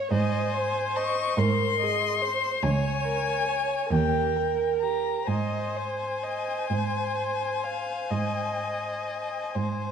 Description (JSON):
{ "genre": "classical, slow romantic movement for string quartet", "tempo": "41-49 BPM (dotted quarters)", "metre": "12/8", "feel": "rubato", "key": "Ab major", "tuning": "A4 = 441 Hz", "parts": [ { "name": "warm violin", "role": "second line", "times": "0.0-9.9 s", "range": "G4 to F5", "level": "-32 LUFS", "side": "left 2 dB", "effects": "none" }, { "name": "warm viola", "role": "accompaniment", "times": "0.0-9.9 s", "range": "Ab4 to Db5", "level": "-31 LUFS", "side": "right 5 dB", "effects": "none" }, { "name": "warm violin", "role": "melody", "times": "0.1-9.9 s", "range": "G5 to Db6", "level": "-30 LUFS", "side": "left 7 dB", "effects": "none" }, { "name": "rich cello", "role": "bass", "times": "0.1-9.9 s", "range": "Db2 to Ab2", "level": "-29 LUFS", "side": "right 3 dB", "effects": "none" } ], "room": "moderate recital hall reverb, RT60 1.6 s", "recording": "dark, warm production", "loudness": "-24 LUFS", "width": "side -7 dB against mid", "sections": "0.0-9.9 A section", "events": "none", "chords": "0.1 Ab; 2.6 Bbm/Db; 3.9 Eb; 5.3 Ab" }